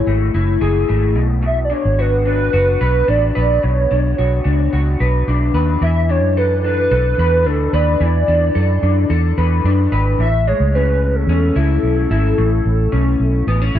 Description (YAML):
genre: indie pop, bedroom pop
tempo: 110 BPM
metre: 4/4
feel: straight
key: A major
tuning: A4 = 440 Hz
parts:
  - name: warbly nostalgic lead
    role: melody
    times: 0.0-13.8 s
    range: A4 to E5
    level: -19 LUFS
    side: right 2 dB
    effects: ensemble chorus
  - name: electric guitar through a small old amp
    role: accompaniment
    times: 0.0-13.8 s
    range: A2 to B4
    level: -20 LUFS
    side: left 5 dB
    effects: analog chorus, vibrato effect
  - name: vintage muted fingered electric bass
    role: bass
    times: 0.1-13.8 s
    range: F#1 to F#2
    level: -16 LUFS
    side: right 1 dB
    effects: none
room: digital ambience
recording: none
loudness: -13 LUFS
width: side -11 dB against mid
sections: 0.0-13.8 A section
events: none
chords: 0.0 F#m9; 1.2 Bmadd9; 5.8 E7sus4; 10.2 Amaj7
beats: 0.35 0.89 | 1.44 1.99 2.53 3.08 | 3.63 4.17 4.72 5.27 | 5.82 6.36 6.91 7.46 | 8.00 8.55 9.10 9.64 | 10.19 10.74 11.29 11.83 | 12.38 12.93 13.47